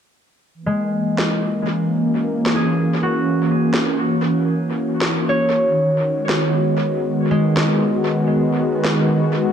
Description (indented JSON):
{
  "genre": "ambient dub",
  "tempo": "94 BPM",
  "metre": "4/4",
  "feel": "straight",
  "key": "F# mixolydian",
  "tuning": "A4 = 440 Hz",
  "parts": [
    { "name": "warm analog pad", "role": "sustained chords", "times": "0.5-9.5 s", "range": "D#3 to F#4", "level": "-18 LUFS", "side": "equal", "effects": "chorus, tremolo" },
    { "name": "concert harp", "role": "arpeggios", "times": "0.7-9.5 s", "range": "G#3 to C#5", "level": "-23 LUFS", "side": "left 1 dB", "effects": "low-pass filter, analog delay" },
    { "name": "electronic snare drum", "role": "drums", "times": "1.2-9.0 s", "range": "none", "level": "-24 LUFS", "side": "equal", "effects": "dub echo" }
  ],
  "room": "moderate spring reverb, RT60 2.4 s",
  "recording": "echo-heavy mix",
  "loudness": "-16 LUFS",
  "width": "side -8 dB against mid",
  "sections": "0.5-9.5 A section",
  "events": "none",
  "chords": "0.5 F#7; 5.7 G#m7",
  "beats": "| 0.55 1.19 1.82 2.46 | 3.10 3.74 4.38 5.01 | 5.65 6.29 6.93 7.57 | 8.21 8.85 9.48"
}